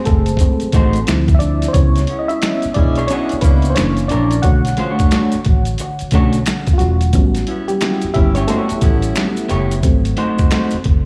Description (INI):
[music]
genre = R&B, neo-soul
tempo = 89 BPM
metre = 4/4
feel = swing 64% on 16ths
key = unclear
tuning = A4 = 439 Hz
[part]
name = FM electric piano with tremolo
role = accompaniment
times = 0.0-11.1 s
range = D3 to F#5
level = -21 LUFS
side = equal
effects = slapback echo
[part]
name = vintage muted fingered electric bass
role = bass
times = 0.1-11.1 s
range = E1 to D2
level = -20 LUFS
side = equal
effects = none
[part]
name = boom bap sampler-style drum kit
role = drums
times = 0.1-11.0 s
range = finger snaps, hi-hat, kick drum, snare drum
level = -18 LUFS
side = equal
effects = none
[part]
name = maracas and finger snaps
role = percussion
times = 0.1-10.8 s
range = none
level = -34 LUFS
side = equal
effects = none
[part]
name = electric guitar at the edge of break-up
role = second line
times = 0.4-10.8 s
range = A3 to C#5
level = -23 LUFS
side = equal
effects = slapback echo
[part]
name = dark saxophone section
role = stabs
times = 2.1-9.3 s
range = A#3 to G#4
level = -30 LUFS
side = equal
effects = tape echo, slapback echo
[sound]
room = little or no reverb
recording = live gig heard through the venue's PA, club reverb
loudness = -15 LUFS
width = mono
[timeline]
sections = 0.0-11.1 A section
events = FM electric piano solo 0.0-11.1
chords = 0.0 G#7b9; 1.1 Dm7; 1.7 C#m7; 3.8 F#7b13; 4.4 Bm9; 7.1 A9; 9.8 G#7b9